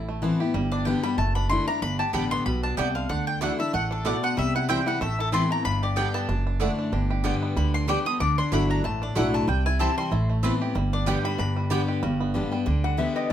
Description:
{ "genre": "bluegrass", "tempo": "188 BPM", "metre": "4/4", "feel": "swing 55% on 8ths", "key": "G major", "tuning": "A4 = 440 Hz", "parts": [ { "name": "bluegrass banjo", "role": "melody", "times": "0.0-13.3 s", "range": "D3 to G4", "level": "-34 LUFS", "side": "right 5 dB", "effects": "none" }, { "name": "picked steel-string acoustic guitar", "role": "accompaniment", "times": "0.0-13.3 s", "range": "F#2 to G4", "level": "-27 LUFS", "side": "left 3 dB", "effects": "none" }, { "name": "upright bass", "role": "bass", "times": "0.0-13.3 s", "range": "F#1 to D2", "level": "-27 LUFS", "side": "right 1 dB", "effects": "none" }, { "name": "mandolin", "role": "melody", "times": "0.7-11.9 s", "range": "A4 to Eb6", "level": "-28 LUFS", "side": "left 2 dB", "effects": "none" }, { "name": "mandolin", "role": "stabs", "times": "2.1-11.8 s", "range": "A3 to A5", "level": "-30 LUFS", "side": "right 5 dB", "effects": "none" }, { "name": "lap resonator guitar", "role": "second line", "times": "12.8-13.3 s", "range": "Eb5 to F#5", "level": "-27 LUFS", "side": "left 6 dB", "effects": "none" } ], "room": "light reverb", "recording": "close, detailed microphones", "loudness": "-22 LUFS", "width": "side -10 dB against mid", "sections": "0.0-12.0 A section; 12.0-13.3 A section", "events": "mandolin solo 0.0-12.0; resonator guitar played with a steel bar solo 12.0-13.3", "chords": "0.0 Amadd9; 0.5 G; 1.2 Dadd9/F#; 1.8 G; 3.1 Dadd9; 4.4 C; 5.0 Amadd9; 5.6 G; 6.3 Dadd9/F#; 6.9 G; 8.2 Dadd9; 9.5 C; 10.1 Amadd9; 10.8 G", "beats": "0.22 | 0.54 0.86 1.18 1.50 | 1.82 2.14 2.46 2.78 | 3.10 3.42 3.73 4.05 | 4.37 4.69 5.01 5.33 | 5.65 5.97 6.29 6.61 | 6.92 7.24 7.56 7.88 | 8.20 8.52 8.84 9.16 | 9.48 9.80 10.12 10.44 | 10.76 11.07 11.39 11.71 | 12.03 12.35 12.67 12.99 | 13.31" }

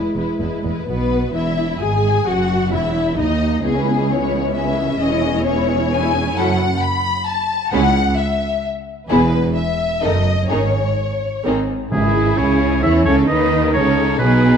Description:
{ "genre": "classical, dramatic, fast romantic movement for symphony orchestra", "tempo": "131 BPM", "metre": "3/4", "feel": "rubato", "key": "E major, C# minor from 6.4 s", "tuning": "A4 = 440 Hz", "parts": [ { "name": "warm symphonic violin section", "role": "melody", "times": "0.0-14.6 s", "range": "E4 to B5", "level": "-22 LUFS", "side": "left 5 dB", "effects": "none" }, { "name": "warm symphonic violin section", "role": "second line", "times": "0.0-14.6 s", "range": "B3 to C#5", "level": "-25 LUFS", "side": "left 4 dB", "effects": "none" }, { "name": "warm symphonic viola section", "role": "accompaniment", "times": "0.0-14.6 s", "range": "D#3 to G#4", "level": "-21 LUFS", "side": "right 2 dB", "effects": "none" }, { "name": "mellow French horn section", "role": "sustained chords", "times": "0.0-0.6 s", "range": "G#3 to E4", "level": "-25 LUFS", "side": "equal", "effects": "none" }, { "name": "rich studio cello section", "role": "bass", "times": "0.2-14.6 s", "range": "C#2 to E3", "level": "-22 LUFS", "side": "right 2 dB", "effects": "none" }, { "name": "rich symphonic double bass section", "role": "bass", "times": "0.2-14.6 s", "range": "E1 to E2", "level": "-22 LUFS", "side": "right 3 dB", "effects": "none" }, { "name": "clear oboe", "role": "second line", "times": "11.9-14.6 s", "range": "G#4 to E5", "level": "-21 LUFS", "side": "right 1 dB", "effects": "none" }, { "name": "timpani", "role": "percussion", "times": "11.9-12.6 s", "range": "C#3", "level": "-24 LUFS", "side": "left 1 dB", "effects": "none" } ], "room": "moderate scoring stage reverb, RT60 1.8 s", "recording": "dark, warm production", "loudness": "-15 LUFS", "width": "side -7 dB against mid", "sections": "0.9-11.9 A section; 11.9-14.6 B section", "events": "none", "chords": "0.0 E; 2.3 Esus2; 3.6 C#m7; 5.0 C#m/E; 6.4 F#m; 7.7 C#m; 9.1 E; 10.0 D#dim/F#; 10.5 G#sus4; 11.5 G#; 11.9 C#m/G#; 13.3 G#m", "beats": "0.40 | 0.88 1.34 1.80 | 2.27 2.72 3.18 | 3.64 4.09 4.54 | 5.00 5.45 5.91 | 6.36 6.81 7.26 | 7.72 8.18 8.63 | 9.09 9.55 10.02 | 10.49 10.98 11.45 | 11.93 12.39 12.84 | 13.29 13.74 14.20" }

